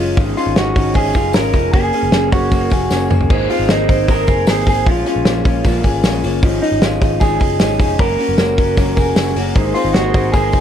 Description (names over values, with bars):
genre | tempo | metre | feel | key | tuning
jangly indie pop | 154 BPM | 4/4 | straight | Db major | A4 = 440 Hz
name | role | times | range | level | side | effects
electric guitar through a small old amp | accompaniment | 0.0-10.6 s | Ab2 to C5 | -22 LUFS | right 4 dB | wide subtle chorus
electric guitar through a small old amp | arpeggios | 0.0-10.6 s | Eb3 to Ab4 | -21 LUFS | left 6 dB | none
vintage muted picked electric bass | bass | 0.0-10.6 s | F1 to Bb1 | -21 LUFS | equal | none
loose indie drum kit | drums | 0.2-10.6 s | crash cymbal, hi-hat, kick drum, snare drum, toms | -16 LUFS | equal | none
tambourine | percussion | 0.2-10.6 s | none | -39 LUFS | left 10 dB | none
electric guitar through a small old amp | melody | 0.4-10.6 s | Eb4 to Bb4 | -20 LUFS | right 1 dB | none
warm analog pad | sustained chords | 9.5-10.6 s | Ab4 to C6 | -27 LUFS | right 2 dB | chorus, tremolo
room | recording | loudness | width
light reverb, studio reverb | none | -12 LUFS | side -9 dB against mid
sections
0.0-10.6 A section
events
drum fill 2.9-3.3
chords
0.2 Dbadd9/Ab; 1.7 Gbadd9; 3.3 Abadd9; 4.9 Bbm7; 6.4 Dbadd9/Ab; 8.0 Gbadd9; 9.6 Abadd9